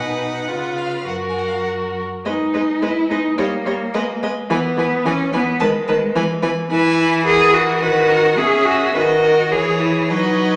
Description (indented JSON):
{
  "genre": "quick classical-period movement for string quartet",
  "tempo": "107 BPM",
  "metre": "2/4",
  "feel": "straight",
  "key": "G# minor, B major from 6.7 s",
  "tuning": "A4 = 440 Hz",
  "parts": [
    { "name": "clear violin", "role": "melody", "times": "0.0-10.6 s", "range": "C#5 to A5", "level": "-30 LUFS", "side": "equal", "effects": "none" },
    { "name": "rich violin", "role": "second line", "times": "0.0-10.6 s", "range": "G#4 to C#5", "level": "-26 LUFS", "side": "equal", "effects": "none" },
    { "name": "rich viola", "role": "accompaniment", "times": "0.0-10.6 s", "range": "D#3 to F#4", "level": "-22 LUFS", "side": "equal", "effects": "none" },
    { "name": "rich cello", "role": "bass", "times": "0.0-10.6 s", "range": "F#2 to G#4", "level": "-21 LUFS", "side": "equal", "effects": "none" }
  ],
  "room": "wet recital hall reverb, RT60 1.4 s",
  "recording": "none",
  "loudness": "-18 LUFS",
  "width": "mono",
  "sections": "0.0-2.3 A section; 2.3-10.6 B section",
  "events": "none",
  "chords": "0.5 C#7; 1.1 F#; 2.3 G#m; 3.4 D# (rootless); 3.9 G#m; 4.5 E; 5.6 B; 6.2 E; 7.3 F#7/E; 7.8 B/D#; 8.4 C#m; 8.9 B/D# (rootless); 9.5 C#m/E"
}